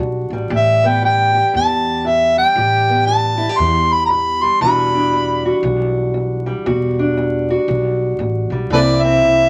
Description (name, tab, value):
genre	acoustic country blues, solo or duo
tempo	117 BPM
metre	4/4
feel	swing 62% on 8ths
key	E minor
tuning	A4 = 440 Hz
part	fingerpicked steel-string acoustic guitar	accompaniment	0.0-9.5 s	E2 to G4	-22 LUFS	equal	none
part	upright bass	bass	0.0-9.5 s	E1 to E2	-23 LUFS	equal	none
part	warm harmonica	melody	0.6-5.6, 8.7-9.5 s	A4 to C6	-16 LUFS	equal	none
room	moderate studio ambience, RT60 0.5 s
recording	vinyl crackle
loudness	-16 LUFS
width	mono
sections	0.0-9.5 A section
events	none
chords	0.0 Em9; 0.5 Asus2; 4.6 Em9; 8.7 C7